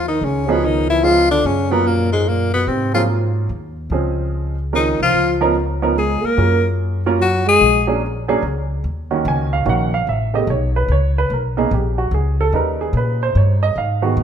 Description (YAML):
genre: jazz, small-group swing and bop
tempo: 146 BPM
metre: 3/4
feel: swing 65% on 8ths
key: Eb minor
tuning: A4 = 441 Hz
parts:
  - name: clear tenor saxophone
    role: melody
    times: 0.0-7.9 s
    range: Ab3 to Bb4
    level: -17 LUFS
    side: left 4 dB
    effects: none
  - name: dark trombone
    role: second line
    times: 0.0-7.8 s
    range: Ab2 to Bb3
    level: -22 LUFS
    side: right 4 dB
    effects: none
  - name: upright bass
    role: bass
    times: 0.0-14.2 s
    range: A1 to Bb2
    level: -20 LUFS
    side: equal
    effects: none
  - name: warm upright piano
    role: accompaniment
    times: 0.5-14.2 s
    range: C#3 to Ab5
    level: -20 LUFS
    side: right 4 dB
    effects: none
room: moderate large studio reverb, RT60 1.5 s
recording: minimal, uncompressed stereo recording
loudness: -15 LUFS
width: side -8 dB against mid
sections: 0.0-8.8 A section; 8.8-14.2 B section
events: none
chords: 0.2 Db9; 1.5 Gbmaj7; 2.7 Ab13; 3.9 Dbmaj7; 5.1 Db13; 6.4 Gbmaj9; 7.6 Bb7alt; 8.8 Ebm7; 10.1 Aadd9; 11.3 Bmaj7sus2; 12.5 Eb7b13